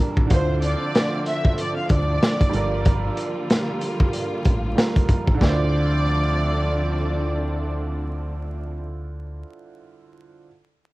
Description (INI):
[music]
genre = hip hop, boom-bap hip-hop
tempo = 94 BPM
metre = 4/4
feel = swing 59% on 16ths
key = D minor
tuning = A4 = 441 Hz
[part]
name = clear upright piano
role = accompaniment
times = 0.0-10.5 s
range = D3 to C5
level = -30 LUFS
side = right 4 dB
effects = cassette tape
[part]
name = warm studio string section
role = sustained chords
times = 0.0-8.7 s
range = D3 to F4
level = -30 LUFS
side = left 1 dB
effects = cassette tape
[part]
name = deep dub fingered electric bass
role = bass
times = 0.2-9.4 s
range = G1 to D2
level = -24 LUFS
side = equal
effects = none
[part]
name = crunchy breakbeat drum kit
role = drums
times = 0.2-5.6 s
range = hi-hat, kick drum, snare drum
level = -20 LUFS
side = equal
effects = cassette tape
[part]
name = warm studio violin section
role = melody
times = 0.3-7.3 s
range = C5 to F5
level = -28 LUFS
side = equal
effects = analog delay
[sound]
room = studio reverb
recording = home recording on cassette, vinyl crackle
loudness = -19 LUFS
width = side -20 dB against mid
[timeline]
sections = 0.0-5.4 A section; 5.4-8.0 B section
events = none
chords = 0.3 Dm7; 2.5 Gm7; 5.4 Dm7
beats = | 0.30 0.94 1.58 2.22 | 2.86 3.50 4.13 4.77 | 5.41 6.05 6.69 7.33